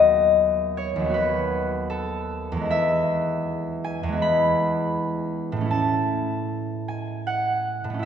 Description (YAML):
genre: classical, solo harp piece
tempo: 79 BPM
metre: 4/4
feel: rubato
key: E major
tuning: A4 = 440 Hz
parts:
  - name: concert harp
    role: solo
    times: 0.0-8.1 s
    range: D#2 to B5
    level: -21 LUFS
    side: left 1 dB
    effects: none
room: wet scoring stage reverb, RT60 2.1 s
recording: heard from further back in the room, nothing above 10.6 kHz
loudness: -22 LUFS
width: side -8 dB against mid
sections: 0.0-8.1 A section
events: none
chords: 0.0 B/D#; 2.7 E; 5.7 A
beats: 0.39 1.15 1.91 | 2.71 3.48 4.23 4.97 | 5.72 6.49 7.27 8.04